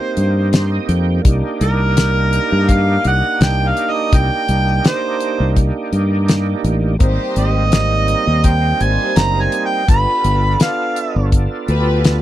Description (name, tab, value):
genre	straight-eighth soul blues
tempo	83 BPM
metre	4/4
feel	swing 54% on 16ths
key	C dorian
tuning	A4 = 440 Hz
part	clear harmonica	melody	0.0-11.3 s	Bb4 to B5	-18 LUFS	right 1 dB	overdrive
part	overdriven tonewheel organ	accompaniment	0.0-12.2 s	G3 to G5	-22 LUFS	right 5 dB	chorus vibrato, slow rotary speaker
part	fingered electric bass	bass	0.2-12.2 s	F#1 to G2	-16 LUFS	left 1 dB	none
part	damped 70s drum kit	drums	0.2-12.2 s	hi-hat, kick drum, snare drum	-14 LUFS	left 1 dB	none
part	warm symphonic string section	sustained chords	7.0-12.2 s	G3 to C5	-24 LUFS	left 3 dB	none
room	little or no reverb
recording	dry, close 1970s-style studio recording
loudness	-13 LUFS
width	side -13 dB against mid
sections	0.0-12.2 A section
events	tonewheel organ fill 0.2-1.2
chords	0.0 Cm9; 7.0 Abmaj7; 9.9 G7